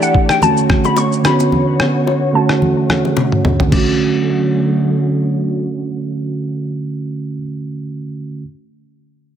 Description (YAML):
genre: afrobeats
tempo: 109 BPM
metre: 4/4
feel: swing 55% on 16ths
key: D major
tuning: A4 = 439 Hz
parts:
  - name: glassy wavetable pluck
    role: melody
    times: 0.0-7.4 s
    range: F#5 to D6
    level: -19 LUFS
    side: left 4 dB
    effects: chorus, low-pass filter, ping-pong delay
  - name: bell-like tine electric piano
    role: accompaniment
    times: 0.0-8.4 s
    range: D3 to G4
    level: -17 LUFS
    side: right 4 dB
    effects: low-pass filter
  - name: warm studio string section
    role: sustained chords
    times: 0.0-6.7 s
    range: D3 to D5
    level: -21 LUFS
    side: left 3 dB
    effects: sidechain pumping, low-pass filter
  - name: lo-fi sampler-style drum kit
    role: drums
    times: 0.0-3.9 s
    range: crash cymbal, kick drum, rim click, shaker, toms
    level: -18 LUFS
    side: left 1 dB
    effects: overdrive
  - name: congas and bongos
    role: percussion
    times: 0.4-4.0 s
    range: none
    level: -22 LUFS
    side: left 3 dB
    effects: none
room: light reverb, digital ambience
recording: none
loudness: -13 LUFS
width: side -9 dB against mid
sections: 0.0-3.7 A section; 3.7-5.9 B section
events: filter sweep 0.0-3.7; drum fill 3.2-3.7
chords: 0.4 Dmaj7; 1.2 Bmadd9; 2.3 Dmaj7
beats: 0.42 0.97 | 1.52 2.07 2.62 3.17 | 3.72 4.27 4.82 5.37